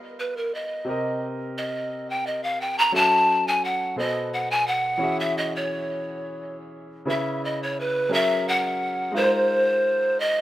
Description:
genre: R&B.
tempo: 58 BPM (dotted quarters).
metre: 6/8.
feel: straight.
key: unclear.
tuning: A4 = 440 Hz.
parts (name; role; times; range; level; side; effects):
clear concert grand piano; accompaniment; 0.0-10.4 s; B2 to Fb5; -29 LUFS; equal; none.
breathy mellow pan flute; melody; 0.2-10.4 s; A#4 to Bb5; -22 LUFS; equal; none.
room: light reverb, small room ambience.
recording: rough home demo mix.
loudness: -21 LUFS.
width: side -14 dB against mid.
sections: 0.0-9.1 A section; 9.1-10.4 B section.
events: pan flute solo 0.0-9.1.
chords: 0.0 G7alt; 0.9 Cm7; 2.9 Gbm7; 4.0 B7b9; 5.0 E69; 7.1 Dbm7; 8.1 Gb9; 9.1 Ab6.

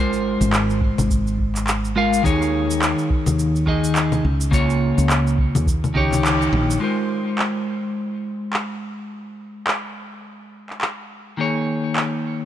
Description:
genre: sunset chillout.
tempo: 105 BPM.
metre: 4/4.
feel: swing 57% on 16ths.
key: Ab major.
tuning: A4 = 441 Hz.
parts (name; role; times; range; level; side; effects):
clean electric guitar; accompaniment; 0.0-12.4 s; Db3 to F5; -21 LUFS; left 1 dB; auto-pan, low-pass filter, ping-pong delay.
woody fretless electric bass; bass; 0.0-6.8 s; Ab1 to Eb2; -22 LUFS; equal; none.
electronic shaker, handclaps and congas; drums; 0.1-12.1 s; none; -24 LUFS; left 1 dB; none.
electronic kick drum; drums; 0.8-6.1 s; none; -21 LUFS; equal; overdrive.
room: light reverb.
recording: none.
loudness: -18 LUFS.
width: side -11 dB against mid.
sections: 0.0-6.8 A section; 6.8-12.4 B section.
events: band accent 6.2; filter sweep on clean electric guitar 6.8-12.4.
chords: 0.0 Ab69; 2.2 Eb7sus4; 4.2 Db6; 5.7 Eb7; 6.8 Ab69; 11.4 Eb7sus4.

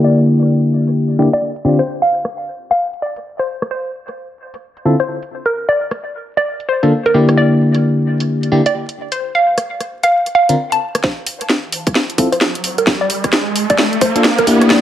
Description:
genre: UK garage, two-step garage.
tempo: 131 BPM.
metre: 4/4.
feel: swing 62% on 16ths.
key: unclear.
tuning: A4 = 439 Hz.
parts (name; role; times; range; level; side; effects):
hollow square pluck; melody; 0.0-14.8 s; Bb4 to A5; -17 LUFS; equal; chorus, dub echo.
FM electric piano; stabs; 0.0-1.8, 4.9-14.8 s; D3 to Bb4; -13 LUFS; left 1 dB; chorus, low-pass filter, tape echo.
garage drum kit; drums; 0.4-14.8 s; hi-hat, rim click, snare drum; -17 LUFS; equal; high-pass filter on hats, low-pass filter on hats, high-pass filter on snare, low-pass filter on snare, high-pass filter on cymbals, low-pass filter on cymbals, dub echo.
electronic kick drum; drums; 11.0-14.8 s; none; -18 LUFS; equal; high-pass filter on kick.
riser; sound effects; 11.8-14.8 s; none; -20 LUFS; right 1 dB; none.
room: wet spring reverb, RT60 1.1 s, digital ambience.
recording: echo-heavy mix, vinyl crackle, low-pass filter.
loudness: -13 LUFS.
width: side -11 dB against mid.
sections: 0.0-11.0 A section; 11.0-14.8 B section.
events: filter sweep on drum 0.0-11.0; filter sweep 0.0-11.0; build-up 11.0-14.8; drum fill 11.0-14.8; riser 11.8-14.8.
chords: 0.0 Gm6/D; 1.6 Dm7; 3.7 Dm9; 5.5 Gm/D; 7.4 Gm6/D; 9.0 Bbadd9; 11.0 C; 12.9 Gm/D.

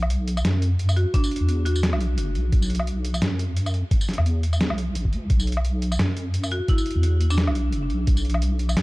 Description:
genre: half-time drum and bass.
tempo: 173 BPM.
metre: 4/4.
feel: swing 56% on 16ths, half-time.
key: B minor.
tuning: A4 = 436 Hz.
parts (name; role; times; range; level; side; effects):
deep soft wobble bass; bass; 0.0-8.8 s; F#1 to F#2; -22 LUFS; equal; chorus.
boom bap sampler-style drum kit; drums; 0.0-8.8 s; hi-hat, snare drum, tambourine, woodblock; -28 LUFS; equal; studio reverb.
marimba with hard mallets; melody; 1.0-2.0, 6.5-7.7 s; D4 to F#4; -30 LUFS; equal; vintage 12-bit sampler grit, tape echo.
electronic kick drum; drums; 1.1-8.2 s; none; -21 LUFS; equal; studio reverb.
room: digital ambience.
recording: dark, warm production.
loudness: -20 LUFS.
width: side -21 dB against mid.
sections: 0.0-8.8 A section.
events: none.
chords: 0.0 B5.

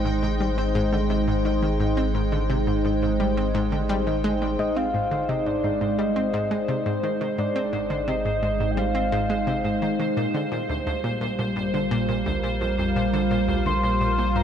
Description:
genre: ambient, sequencer-driven space music.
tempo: 86 BPM.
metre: 4/4.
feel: straight.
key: unclear.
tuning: A4 = 440 Hz.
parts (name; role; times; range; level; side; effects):
evolving wavetable pad; sustained chords; 0.0-14.4 s; G3 to G5; -25 LUFS; equal; chorus, built-in reverb.
analog pluck; riff; 0.0-14.4 s; D2 to C4; -28 LUFS; equal; chorus, tape echo.
round analog bass; bass; 0.0-14.4 s; Ab1 to Bb1; -28 LUFS; equal; none.
pulsing gated texture; texture; 0.0-14.4 s; C5 to G5; -33 LUFS; right 2 dB; chorus, built-in reverb.
soft octave-layered synth lead; melody; 4.6-14.4 s; D5 to C6; -29 LUFS; left 1 dB; chorus, vintage 12-bit sampler grit, tape echo.
room: wet huge ambient reverb, RT60 9.2 s.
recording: cassette tape.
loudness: -22 LUFS.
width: side -8 dB against mid.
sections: 0.0-14.4 A section.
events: none.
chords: 0.0 Ab; 10.2 Bb6.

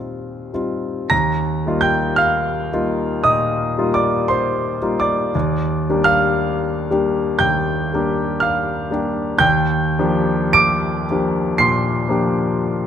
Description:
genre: classical, impressionist solo piano.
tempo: 49-62 BPM.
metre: 4/4.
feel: rubato.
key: Eb major.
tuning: A4 = 441 Hz.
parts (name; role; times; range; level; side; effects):
warm concert grand piano; solo; 0.0-12.9 s; Eb2 to D7; -16 LUFS; equal; none.
room: moderate concert hall reverb, RT60 2.4 s.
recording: close, detailed microphones.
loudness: -16 LUFS.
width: side -9 dB against mid.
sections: 0.0-1.1 A section; 1.1-12.9 B section.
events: none.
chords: 0.0 Eb69; 1.1 Ebadd9; 5.3 Gm7/Eb; 9.4 Ebmaj9.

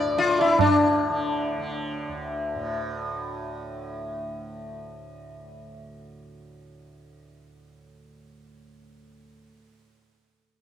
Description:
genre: indian classical, Hindustani.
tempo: 146 BPM.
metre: 5/4.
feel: straight.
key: unclear.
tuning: A4 = 440 Hz.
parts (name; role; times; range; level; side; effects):
sitar; melody; 0.0-4.1 s; D4 to D5; -23 LUFS; left 3 dB; cassette tape.
tanpura; drone; 0.0-9.7 s; D2 to D3; -34 LUFS; right 1 dB; cassette tape.
tabla; percussion; 0.2-0.8 s; none; -26 LUFS; right 7 dB; none.
room: wet lush hall reverb, RT60 2.4 s.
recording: home recording on cassette.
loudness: -23 LUFS.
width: side -10 dB against mid.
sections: 0.6-2.7 A section.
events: none.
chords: none.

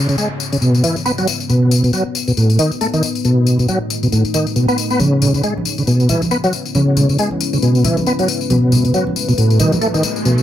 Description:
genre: breakbeat, breaks.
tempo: 137 BPM.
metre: 4/4.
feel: swing 58% on 16ths.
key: C# minor.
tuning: A4 = 442 Hz.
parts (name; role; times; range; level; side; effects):
deep dark ambient pad; sustained chords; 0.2-10.4 s; G#3 to B4; -23 LUFS; left 1 dB; chorus, built-in reverb.
overdriven tonewheel organ; riff; 0.0-10.4 s; A2 to B3; -14 LUFS; equal; chorus vibrato, fast rotary speaker, low-pass filter, ping-pong delay.
downlifter and riser; sound effects; 0.0-1.5, 9.2-10.4 s; none; -33 LUFS; right 1 dB; none.
tambourine; drums; 0.1-10.4 s; none; -23 LUFS; left 8 dB; none.
congas; percussion; 5.0-10.4 s; none; -22 LUFS; right 2 dB; none.
room: moderate small room reverb, RT60 0.6 s.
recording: none.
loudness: -13 LUFS.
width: side -11 dB against mid.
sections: 0.0-10.4 A section.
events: riser 9.2-10.4.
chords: 0.0 C#m7; 1.5 B7; 5.0 C#m7; 8.5 B7.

